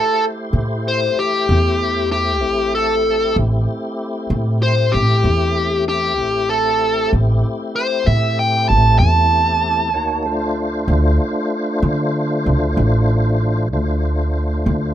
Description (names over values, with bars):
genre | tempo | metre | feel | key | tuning
slow blues | 64 BPM (dotted quarters) | 12/8 | straight | A minor | A4 = 440 Hz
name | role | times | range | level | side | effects
smooth overdriven lead guitar | melody | 0.0-10.8 s | G4 to A5 | -16 LUFS | equal | none
tonewheel organ | sustained chords | 0.0-14.9 s | A3 to C#5 | -23 LUFS | left 1 dB | slow rotary speaker, overdrive, chorus vibrato
upright bass | bass | 0.5-14.9 s | A1 to D3 | -18 LUFS | equal | none
room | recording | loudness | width
light reverb | rough home demo mix | -15 LUFS | side -11 dB against mid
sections
0.0-14.9 A section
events
none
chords
0.0 Am7; 10.0 Dm7